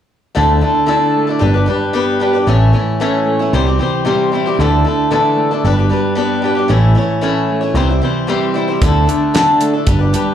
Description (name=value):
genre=folk rock and heartland rock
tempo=114 BPM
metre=4/4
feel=straight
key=unclear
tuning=A4 = 440 Hz
part: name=picked swing-style acoustic guitar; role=accompaniment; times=0.3-10.3 s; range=A2 to C#5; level=-15 LUFS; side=left 2 dB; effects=plate reverb, slapback echo
part: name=mellow electric guitar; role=riff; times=0.4-10.3 s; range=G2 to G4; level=-18 LUFS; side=right 2 dB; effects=none
part: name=picked electric bass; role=bass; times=0.4-10.1 s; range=G1 to D2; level=-13 LUFS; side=right 1 dB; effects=none
part: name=damped 70s drum kit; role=drums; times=8.8-10.3 s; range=hi-hat, kick drum, snare drum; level=-16 LUFS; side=right 1 dB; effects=none
room=light reverb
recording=live gig heard through the venue's PA, club reverb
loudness=-12 LUFS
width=side -9 dB against mid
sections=0.4-10.3 A section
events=none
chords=0.4 Dsus2; 1.4 G; 2.5 A; 3.5 C; 4.6 Dsus2; 5.6 G; 6.7 A; 7.8 C; 8.8 Dsus2